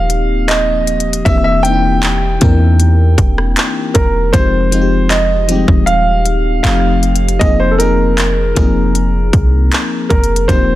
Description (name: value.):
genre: contemporary R&B.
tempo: 78 BPM.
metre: 4/4.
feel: straight.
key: unclear.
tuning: A4 = 440 Hz.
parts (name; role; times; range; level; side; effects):
warm concert grand piano; melody; 0.0-10.8 s; A4 to G5; -17 LUFS; right 2 dB; tape echo.
FM electric piano; accompaniment; 0.0-10.8 s; E3 to Bb4; -17 LUFS; left 4 dB; chorus.
clean 808-style bass; bass; 0.0-10.8 s; Eb1 to E2; -14 LUFS; equal; none.
trap drum kit; drums; 0.1-10.7 s; handclaps, hi-hat, kick drum, rim click; -15 LUFS; equal; none.
room: little or no reverb.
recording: dense, heavily limited modern master.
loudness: -10 LUFS.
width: side -15 dB against mid.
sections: 0.0-10.8 A section.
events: none.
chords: 0.0 Eb6; 1.3 C7/E; 4.3 Fm7; 6.6 F7; 7.4 Bb7sus4/F.